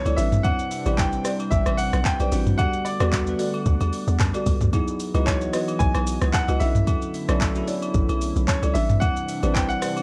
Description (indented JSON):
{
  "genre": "amapiano",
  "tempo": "112 BPM",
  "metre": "4/4",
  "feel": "swing 55% on 16ths",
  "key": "unclear",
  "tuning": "A4 = 440 Hz",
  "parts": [
    { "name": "clear baby grand piano", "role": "melody", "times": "0.0-10.0 s", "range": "C#5 to G#5", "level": "-31 LUFS", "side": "equal", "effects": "delay" },
    { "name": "bell-like tine electric piano", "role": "accompaniment", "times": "0.0-10.0 s", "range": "F#3 to B4", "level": "-31 LUFS", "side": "equal", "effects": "lush chorus" },
    { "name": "warm analog pad", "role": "sustained chords", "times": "0.0-10.0 s", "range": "C3 to F#5", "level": "-37 LUFS", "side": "equal", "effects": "chorus, sidechain pumping" },
    { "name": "buzzing marimba with medium mallets", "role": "stabs", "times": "0.1-10.0 s", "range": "E4 to D#5", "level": "-34 LUFS", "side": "equal", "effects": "delay" },
    { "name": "hollow log drum bass", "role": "bass", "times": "0.1-9.8 s", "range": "A1 to F#2", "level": "-26 LUFS", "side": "equal", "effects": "none" },
    { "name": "smooth R&B drum kit", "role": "drums", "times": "0.1-10.0 s", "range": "handclaps, hi-hat, kick drum, rim click, shaker, toms", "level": "-27 LUFS", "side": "equal", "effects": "vintage 12-bit sampler grit" },
    { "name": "agogo bells and woodblock", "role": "percussion", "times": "0.1-10.0 s", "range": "none", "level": "-37 LUFS", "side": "equal", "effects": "none" }
  ],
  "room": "digital ambience",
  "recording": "none",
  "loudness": "-22 LUFS",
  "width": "mono",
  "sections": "0.0-10.0 A section",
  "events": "none",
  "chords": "0.2 Am11; 2.6 Em11; 4.7 C#m11; 6.6 Bm11; 8.7 Am11"
}